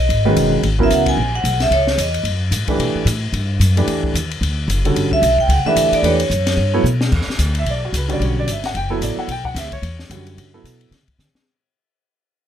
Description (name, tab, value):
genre	modal jazz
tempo	222 BPM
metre	4/4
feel	swing 58% on 8ths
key	unclear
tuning	A4 = 440 Hz
part	vibraphone with medium hard mallets	melody	0.0-2.2, 5.1-6.8 s	C#5 to G#5	-18 LUFS	right 1 dB	none
part	upright bass	bass	0.0-11.4 s	E1 to D3	-19 LUFS	equal	none
part	open jazz drum kit	drums	0.1-11.4 s	crash cymbal, hi-hat, kick drum, ride cymbal, snare drum	-24 LUFS	left 3 dB	none
part	warm concert grand piano	accompaniment	0.3-10.9 s	C#3 to G5	-20 LUFS	right 2 dB	none
room	light reverb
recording	close, detailed microphones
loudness	-15 LUFS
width	side -10 dB against mid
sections	0.0-7.1 A section; 7.1-11.5 B section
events	band accent 1.0; drum fill 6.8, 11.2; fade-out 7.1-11.5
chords	0.0 C#m9; 2.8 Em9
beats	0.10 0.37 | 0.64 0.91 1.18 1.45 | 1.72 1.99 2.26 2.53 | 2.80 3.07 3.34 3.61 | 3.88 4.15 4.42 4.69 | 4.96 5.23 5.50 5.77 | 6.04 6.31 6.58 6.85 | 7.12 7.39 7.66 7.93 | 8.21 8.48 8.75 9.02 | 9.29 9.56 9.83 10.11 | 10.38 10.65 10.92 11.19